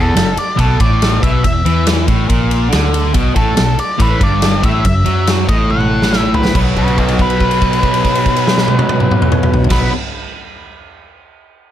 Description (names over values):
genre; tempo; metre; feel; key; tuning
blues rock power trio and southern rock; 141 BPM; 4/4; straight; unclear; A4 = 440 Hz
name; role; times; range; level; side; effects
octave-fuzz lead guitar; melody; 0.0-9.9 s; D#4 to F#5; -19 LUFS; equal; distortion
sludgy distorted guitar; riff; 0.0-9.9 s; E2 to B3; -16 LUFS; equal; overdrive
vintage muted fingered electric bass; bass; 0.0-9.9 s; E1 to F#2; -17 LUFS; equal; none
big rock drum kit; drums; 0.2-9.8 s; crash cymbal, kick drum, ride cymbal, snare drum, toms; -16 LUFS; equal; none
room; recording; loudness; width
light reverb; none; -11 LUFS; side -11 dB against mid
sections
0.0-6.6 A section; 6.6-10.0 B section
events
drum fill 5.7-6.6; held note 6.6-9.7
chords
0.0 E9sus4; 1.4 A#maj7#11/E; 3.1 Asus24; 4.0 G69; 4.9 F#m7; 6.6 B5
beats
0.16 0.59 1.02 | 1.44 1.87 2.30 2.72 | 3.15 3.58 4.00 4.43 | 4.85 5.28 5.71 6.13 | 6.56 6.98 7.41 7.83 | 8.26 8.69 9.11 9.54